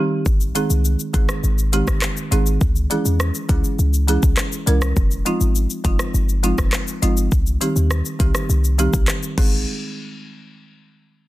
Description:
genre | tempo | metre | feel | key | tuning
dancehall | 102 BPM | 4/4 | straight | Ab major | A4 = 440 Hz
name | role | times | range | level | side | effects
folk marimba with medium mallets | accompaniment | 0.0-9.7 s | Eb3 to Bb4 | -23 LUFS | right 2 dB | none
clean 808-style bass | bass | 0.3-9.7 s | F1 to Fb2 | -18 LUFS | equal | none
afro-pop drum kit | drums | 0.3-9.5 s | crash cymbal, handclaps, hi-hat, kick drum, rim click, shaker | -20 LUFS | equal | none
room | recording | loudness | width
digital ambience | dense, heavily limited modern master | -16 LUFS | side -16 dB against mid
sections
0.0-9.7 A section; 9.7-11.3 B section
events
none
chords
0.3 Ab; 2.6 Dbm; 5.0 Fm7; 7.3 Cm; 9.4 Ab; 9.7 N.C.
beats
| 0.26 0.85 1.44 2.02 | 2.61 3.20 3.79 4.38 | 4.97 5.55 6.14 6.73 | 7.32 7.91 8.49 9.08

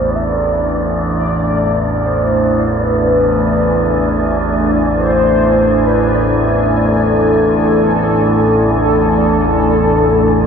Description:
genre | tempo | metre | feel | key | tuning
dark ambient drone | 63 BPM | 4/4 | straight | unclear | A4 = 440 Hz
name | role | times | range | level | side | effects
mellow horn-like synth lead | melody | 0.0-10.5 s | A4 to E5 | -16 LUFS | left 1 dB | wide subtle chorus, diffuse ambient delay
dark analog pad | sustained chords | 0.0-10.5 s | A3 to G#5 | -16 LUFS | right 1 dB | chorus
overtone-sweeping drone | drone | 0.0-10.5 s | A1 to E2 | -16 LUFS | equal | chorus, built-in reverb
wind-like tuned noise texture | texture | 0.0-10.5 s | D5 | -22 LUFS | right 3 dB | built-in reverb
room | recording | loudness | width
wet huge ambient reverb, RT60 8.6 s | none | -11 LUFS | side -6 dB against mid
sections
0.0-10.5 A section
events
none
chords
0.0 E/A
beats
0.10 1.07 2.04 | 3.00 3.96 4.90 5.86 | 6.81 7.76 8.72 9.67

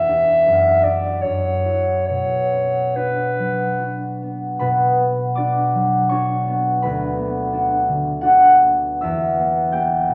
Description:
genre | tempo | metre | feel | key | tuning
classical, romantic duo for clarinet and harp | 68-88 BPM | 3/4 | rubato | B minor | A4 = 441 Hz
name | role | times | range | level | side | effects
mellow clarinet | melody | 0.0-4.2 s | B4 to E5 | -20 LUFS | equal | none
concert harp | accompaniment | 0.0-10.1 s | D2 to G6 | -20 LUFS | equal | none
room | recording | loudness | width
wet recital hall reverb, RT60 1.5 s | none | -18 LUFS | mono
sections
0.0-4.6 A section; 4.6-10.1 B section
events
none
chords
0.5 Bm/F#; 1.3 F#5; 2.1 Bm; 6.8 Bm/D; 9.0 Em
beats
0.47 1.25 | 2.10 2.97 3.81 | 4.62 5.38 6.12 | 6.84 7.54 8.24 | 9.02 9.73

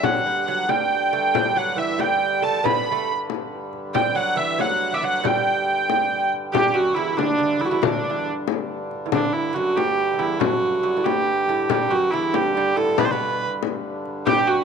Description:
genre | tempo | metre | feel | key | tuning
medieval dance | 93 BPM (dotted quarters) | 6/8 | straight | G major | A4 = 440 Hz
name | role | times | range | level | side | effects
rich hurdy-gurdy | melody | 0.0-14.6 s | D4 to B5 | -21 LUFS | right 2 dB | none
lute | second line | 0.0-14.6 s | D2 to B3 | -28 LUFS | right 9 dB | none
hand-pumped harmonium | drone | 0.0-14.6 s | G2 to D3 | -31 LUFS | left 1 dB | stereo widening
frame drum | percussion | 0.0-14.6 s | none | -25 LUFS | left 14 dB | none
room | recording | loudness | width
moderate plate reverb, RT60 3.2 s | 1960s-style stereo with parts hard left and right | -19 LUFS | side -6 dB against mid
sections
0.0-6.5 A section; 6.5-14.6 A section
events
none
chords
none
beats
| 0.04 0.69 | 1.34 1.99 | 2.64 3.29 | 3.94 4.59 | 5.24 5.89 | 6.54 7.18 | 7.83 8.48 | 9.12 9.77 | 10.41 11.06 | 11.70 12.35 | 12.99 13.63 | 14.28

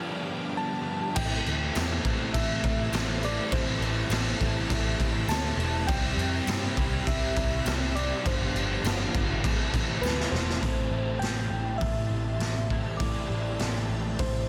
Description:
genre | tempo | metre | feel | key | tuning
rock, shoegaze and dream pop | 101 BPM | 4/4 | straight | A minor | A4 = 441 Hz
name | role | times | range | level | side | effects
string machine, violins | sustained chords | 0.0-14.5 s | G4 to D6 | -44 LUFS | equal | ensemble chorus
overdriven electric guitar | riff | 0.0-14.5 s | G2 to F4 | -37 LUFS | equal | reverse reverb
raw garage guitar | riff | 0.0-14.5 s | G2 to A4 | -38 LUFS | equal | overdrive, analog chorus
soft struck synth lead | melody | 0.6-14.5 s | B4 to A5 | -37 LUFS | equal | chorus, slapback echo
overdriven electric guitar | riff | 1.2-10.6 s | G2 to C4 | -40 LUFS | equal | none
vintage muted picked electric bass | bass | 1.2-14.5 s | E1 to G2 | -34 LUFS | equal | none
raw garage drum kit | drums | 1.2-14.3 s | crash cymbal, hi-hat, kick drum, snare drum | -31 LUFS | equal | none
tambourine | percussion | 1.8-10.2 s | none | -46 LUFS | equal | none
room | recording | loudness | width
small room ambience | dense, heavily limited modern master | -28 LUFS | mono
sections
0.0-1.2 A section; 1.2-10.6 B section; 10.6-14.5 C section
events
break 0.0-1.2; drum fill 10.0-10.6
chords
0.0 G7; 1.2 Am7; 5.9 Cmaj7; 8.2 G7sus4; 9.4 Am7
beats
0.58 | 1.16 1.75 2.34 2.93 | 3.52 4.11 4.70 5.29 | 5.88 6.47 7.06 7.66 | 8.25 8.84 9.44 10.03 | 10.62 11.22 11.81 12.41 | 13.01 13.60 14.20

